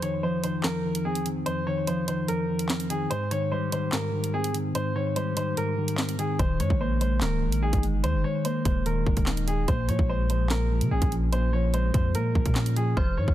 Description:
hip hop, drill; 146 BPM; 4/4; half-time; A4 = 435 Hz
clear baby grand piano; melody; 0.0-13.3 s; Ab4 to Db5; -31 LUFS; equal; low-pass filter, ping-pong delay
mellow electric guitar; accompaniment; 0.0-13.3 s; F2 to Eb4; -28 LUFS; left 1 dB; spring reverb, low-pass filter
drill drum kit; drums; 0.0-13.3 s; handclaps, hi-hat, kick drum, snare drum; -28 LUFS; equal
long sustained 808-style bass; bass; 6.4-13.3 s; Db1 to Db3; -26 LUFS; equal
dark detuned synth bell; second line; 13.0-13.3 s; F6; -37 LUFS; equal; chorus, ping-pong delay
little or no reverb; dense, heavily limited modern master; -24 LUFS; side -13 dB against mid
0.0-13.3 A section
break 0.0-6.4; hi-hats muted 13.0-13.3
0.0 F5; 3.1 Abmaj7; 6.4 Ebsus4; 9.7 Bbm7

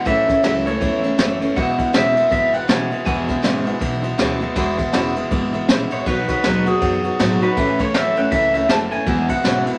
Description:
rockabilly; 160 BPM; 4/4; swing 60% on 8ths; E major; A4 = 440 Hz
electric guitar through a small old amp; melody; 0.0-9.6 s; G#4 to A5; -23 LUFS; equal
picked steel-string acoustic guitar; accompaniment; 0.0-9.8 s; E2 to F#4; -24 LUFS; equal
direct-recorded clean electric guitar; riff; 0.0-9.8 s; E2 to G#3; -28 LUFS; equal
upright bass; bass; 0.1-9.7 s; E1 to A2; -31 LUFS; equal
jazz brush drum kit; drums; 0.1-9.7 s; kick drum, ride cymbal, snare drum; -24 LUFS; equal
wet small room reverb, RT60 0.6 s; -18 LUFS; mono
0.0-9.8 A section
0.1 A; 1.6 E; 6.1 B; 7.6 A; 9.1 E

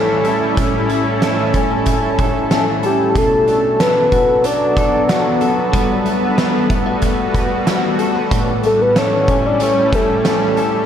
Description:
dream pop; 93 BPM; 4/4; straight; A4 = 439 Hz
soft octave-layered synth lead; melody; 0.0-10.6 s; G4 to D5; -18 LUFS; equal; chorus, digital delay
shimmering ambient pad; sustained chords; 0.0-10.9 s; F#3 to A4; -18 LUFS; equal; chorus, built-in reverb
electric guitar at the edge of break-up; arpeggios; 0.0-10.9 s; A2 to B4; -20 LUFS; left 2 dB; analog chorus, digital delay
oversized low-tuned drum kit; drums; 0.2-10.7 s; hi-hat, kick drum, snare drum; -20 LUFS; equal
moderate huge ambient reverb, RT60 8.2 s; -13 LUFS; side -9 dB against mid
0.0-10.9 A section
0.0 A7; 3.2 Bm7; 5.7 Gmaj9; 8.3 A7

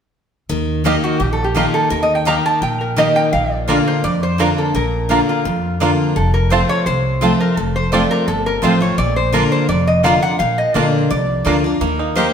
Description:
bluegrass; 170 BPM; 4/4; straight; Bb major; A4 = 439 Hz
picked steel-string acoustic guitar; accompaniment; 0.5-12.3 s; F2 to G4; -18 LUFS; left 1 dB
upright bass; bass; 0.5-12.3 s; F1 to F2; -22 LUFS; equal
mandolin; stabs; 0.8-12.3 s; Bb3 to Bb5; -24 LUFS; right 2 dB
bluegrass banjo; arpeggios; 0.9-12.3 s; Bb3 to G4; -24 LUFS; right 5 dB
lap resonator guitar; melody; 1.0-12.3 s; F4 to Bb5; -19 LUFS; equal
wet stone room reverb, RT60 1.6 s; band playing live in one room; -14 LUFS; side -7 dB against mid
0.5-11.8 A section
0.5 Eb; 3.3 Bb; 6.2 F; 9.0 Bb; 11.8 Eb

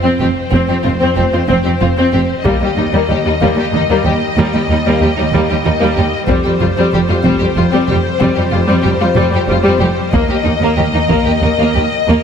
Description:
cinematic, epic orchestral film score; 94 BPM; 3/4; straight; A4 = 440 Hz
rich symphonic violin section; melody; 0.0-12.2 s; C5 to Eb5; -20 LUFS; left 6 dB
rich symphonic violin section; second line; 0.0-12.2 s; Bb3 to G4; -18 LUFS; left 3 dB
rich symphonic viola section; accompaniment; 0.0-12.2 s; G3 to C4; -17 LUFS; equal
rich studio cello section; bass; 0.0-12.1 s; Eb2 to F2; -17 LUFS; right 2 dB
rich symphonic double bass section; bass; 0.2-12.1 s; F1 to Eb2; -19 LUFS; right 3 dB
taiko ensemble; drums; 2.5-11.4 s; -22 LUFS; equal
moderate scoring stage reverb, RT60 2.1 s; heavily compressed radio sound, multiband compression; -11 LUFS; side -7 dB against mid
0.0-12.2 A section
build-up 0.0-12.2
0.0 F5; 2.5 Eb; 6.3 Fsus2; 10.1 Eb5

